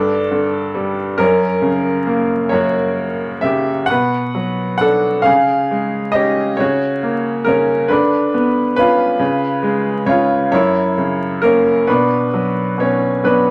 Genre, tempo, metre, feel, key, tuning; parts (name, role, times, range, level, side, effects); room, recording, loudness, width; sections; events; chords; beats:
classical, lyrical solo piano; 45 BPM (dotted quarters); 6/8; rubato; B minor; A4 = 440 Hz
bright upright piano; solo; 0.0-13.5 s; F#2 to F#5; -16 LUFS; equal
moderate small room ambience, RT60 0.5 s; vinyl crackle; -16 LUFS; mono
0.0-13.5 A section
upright piano fill 13.3
0.0 Gsus2; 1.2 F#; 3.9 Bm; 5.3 C#; 6.6 F#/C#; 7.9 Bmadd9/D; 9.2 C#7; 10.5 F#7; 11.9 Bmadd9
| 1.20 2.53 | 3.90 5.27 | 6.60 7.91 | 9.20 10.53 | 11.88 13.25